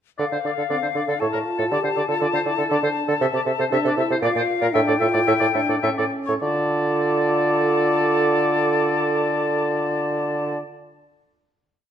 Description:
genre	quick classical-period movement for wind quintet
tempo	101-120 BPM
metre	3/4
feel	straight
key	D minor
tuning	A4 = 439 Hz
part	silver concert flute	melody	0.2-10.6 s	F5 to A5	-26 LUFS	left 9 dB	none
part	clear oboe	second line	0.2-10.6 s	A4 to E5	-26 LUFS	left 2 dB	none
part	clear clarinet	accompaniment	0.2-10.6 s	A4 to D5	-29 LUFS	right 8 dB	none
part	warm bassoon	bass	0.2-10.6 s	A2 to D3	-23 LUFS	right 2 dB	none
part	warm French horn	accompaniment	0.7-10.6 s	C4 to G4	-26 LUFS	equal	none
room	moderate recital hall reverb, RT60 1.3 s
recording	none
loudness	-19 LUFS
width	side -9 dB against mid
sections	0.2-6.4 theme; 6.4-9.9 final chord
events	slowing down 2.5-6.4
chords	0.2 Dm; 1.2 A5; 1.7 D5; 3.2 Am/C; 4.2 Bb; 4.7 A7sus4; 5.8 A7; 6.4 Dm

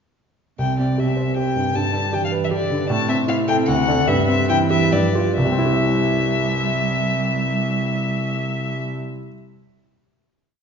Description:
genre	quick classical-period movement for piano trio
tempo	130-159 BPM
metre	3/4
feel	rubato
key	C major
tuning	A4 = 440 Hz
part	warm violin	melody	0.6-8.8 s	D5 to A5	-23 LUFS	left 4 dB	none
part	dark cello	second line	0.6-8.8 s	B2 to G3	-26 LUFS	right 4 dB	none
part	warm grand piano	accompaniment	0.6-9.3 s	C2 to E5	-20 LUFS	equal	none
room	wet scoring stage reverb, RT60 1.4 s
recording	recorded in a church or concert hall, nothing above 7.5 kHz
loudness	-18 LUFS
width	side -6 dB against mid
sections	0.6-5.4 A section; 5.4-8.0 final chord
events	slowing down 2.3-5.4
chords	0.6 C; 1.7 G; 2.9 Am; 3.7 D7; 4.1 C/G; 4.9 G5; 5.4 C

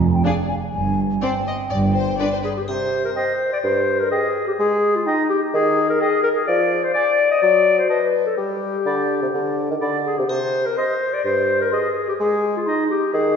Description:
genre	cinematic, playful, whimsical film cue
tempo	126 BPM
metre	4/4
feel	straight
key	C minor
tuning	A4 = 440 Hz
part	rich studio double bass section	bass	0.0-2.1 s	F1 to G1	-25 LUFS	right 5 dB	none
part	warm studio cello section	bass	0.0-2.1 s	F2 to G2	-22 LUFS	right 2 dB	none
part	mellow hollow concert flute	second line	0.1-12.7 s	F5 to C6	-31 LUFS	left 1 dB	none
part	rich studio violin section	second line	0.2-2.3 s	Ab4 to C5	-32 LUFS	left 4 dB	none
part	warm studio viola section	accompaniment	0.2-2.3 s	C4 to D4	-31 LUFS	left 1 dB	none
part	rich studio violin section	melody	0.3-2.5 s	B4 to Eb5	-28 LUFS	left 4 dB	none
part	warm clarinet	second line	2.4-13.4 s	Eb4 to Eb5	-19 LUFS	left 3 dB	none
part	warm bassoon	accompaniment	2.7-13.4 s	G2 to Ab3	-23 LUFS	right 1 dB	none
part	triangle	percussion	2.7-3.6, 10.3-11.2 s	none	-42 LUFS	equal	none
part	warm oboe	second line	3.2-12.8 s	D5 to Eb5	-29 LUFS	right 2 dB	none
room	wet concert hall reverb, RT60 2.3 s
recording	heard from further back in the room, nothing above 7.7 kHz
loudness	-17 LUFS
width	side -6 dB against mid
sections	0.0-2.7 A section; 2.7-13.4 B section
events	none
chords	0.0 N.C.; 2.7 C5; 4.6 Ab5; 6.5 Dm/F; 7.4 D6/F#; 8.4 G5; 10.3 C5; 12.2 Ab5

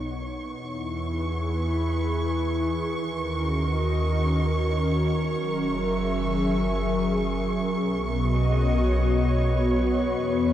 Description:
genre	ambient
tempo	75 BPM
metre	3/4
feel	straight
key	unclear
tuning	A4 = 439 Hz
part	airy breathy pad	sustained chords	0.0-10.5 s	B2 to B5	-24 LUFS	equal	chorus
part	warm sub bass	bass	0.0-10.5 s	F#1 to E2	-28 LUFS	equal	none
part	dark symphonic violin section	texture	0.0-10.5 s	C#6	-34 LUFS	right 1 dB	none
room	wet huge ambient reverb, RT60 7.8 s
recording	dark, warm production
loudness	-23 LUFS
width	side -11 dB against mid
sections	0.0-10.5 A section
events	fade-in on analog synth pad 0.0-10.5; fade-in on sub bass 0.0-10.5; fade-in on violin section 0.0-10.5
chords	0.0 Badd9; 0.6 E; 3.0 D#m7; 5.4 F#7; 7.8 Badd9

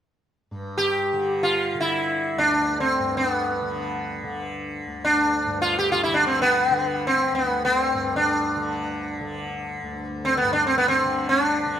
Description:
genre	indian classical, Hindustani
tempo	free time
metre	none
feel	none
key	D raga bageshri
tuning	A4 = 441 Hz
part	tanpura	drone	0.5-11.8 s	D2 to D3	-30 LUFS	left 1 dB	none
part	sitar	melody	0.8-11.8 s	B3 to G4	-21 LUFS	equal	none
room	moderate recital hall reverb, RT60 1.8 s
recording	minimal, uncompressed stereo recording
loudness	-20 LUFS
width	side -9 dB against mid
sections	0.5-11.8 A section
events	none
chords	none

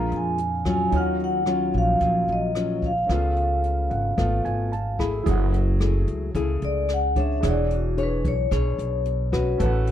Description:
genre	bossa nova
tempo	111 BPM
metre	4/4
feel	straight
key	F# minor from 5.3 s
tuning	A4 = 440 Hz
part	vibraphone with medium mallets	melody	0.0-9.6 s	F#4 to Bb5	-26 LUFS	equal	none
part	nylon-string guitar	accompaniment	0.0-9.9 s	Bb2 to C#5	-27 LUFS	left 4 dB	none
part	warm baby grand piano	accompaniment	0.0-9.9 s	Db4 to F6	-33 LUFS	right 6 dB	none
part	upright bass	bass	0.0-9.9 s	E1 to F2	-25 LUFS	equal	none
part	jazz brush drum kit	drums	0.1-9.9 s	hi-hat, kick drum, rim click	-31 LUFS	equal	none
room	light reverb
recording	dark, warm production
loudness	-21 LUFS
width	side -10 dB against mid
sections	0.0-5.3 A section; 5.3-9.9 B section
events	grand piano fill 3.6-5.3; vibraphone solo 5.3-9.9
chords	0.0 Bb7; 0.9 Ebm9; 3.1 Db7b13; 5.3 F#m9; 7.4 E13

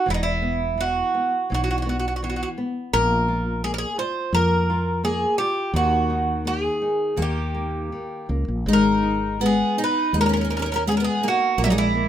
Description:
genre	fado-style ballad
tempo	84 BPM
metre	4/4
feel	rubato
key	G# minor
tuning	A4 = 440 Hz
part	Irish bouzouki	melody	0.0-12.1 s	D#4 to B#4	-23 LUFS	right 1 dB	none
part	nylon-string guitar	accompaniment	0.0-12.1 s	D#3 to E#4	-27 LUFS	left 3 dB	none
part	woody fretless electric bass	bass	0.1-12.1 s	E1 to E#2	-25 LUFS	equal	none
part	picked twelve-string acoustic guitar	second line	7.2-12.1 s	F#3 to D#4	-26 LUFS	right 4 dB	none
room	moderate small room reverb, RT60 0.6 s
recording	minimal, uncompressed stereo recording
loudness	-20 LUFS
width	side -10 dB against mid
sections	0.0-12.1 A section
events	none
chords	0.1 Esus2; 2.9 A#5; 5.7 D#sus4; 7.2 D#; 8.7 G#5

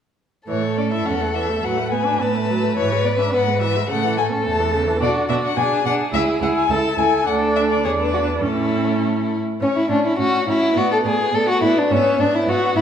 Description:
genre	quick classical-period movement for string quartet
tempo	105 BPM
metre	2/4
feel	straight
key	A major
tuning	A4 = 440 Hz
part	rich violin	melody	0.5-12.8 s	A4 to A5	-24 LUFS	left 8 dB	none
part	warm violin	second line	0.5-12.8 s	C#4 to B4	-20 LUFS	left 2 dB	none
part	rich viola	accompaniment	0.5-12.8 s	C#3 to E4	-23 LUFS	right 2 dB	none
part	clear cello	bass	0.5-12.8 s	C#2 to B2	-24 LUFS	right 5 dB	none
room	wet recital hall reverb, RT60 1.7 s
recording	minimal, uncompressed stereo recording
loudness	-17 LUFS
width	side -8 dB against mid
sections	0.5-9.6 A section; 9.6-12.8 A section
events	none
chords	0.5 A; 1.6 Bm7/A; 2.8 E7/G#; 3.9 A; 5.0 Bm; 6.1 C#m; 7.3 D5; 7.8 E7(no3); 8.4 A; 10.8 Bm7/A; 11.9 E

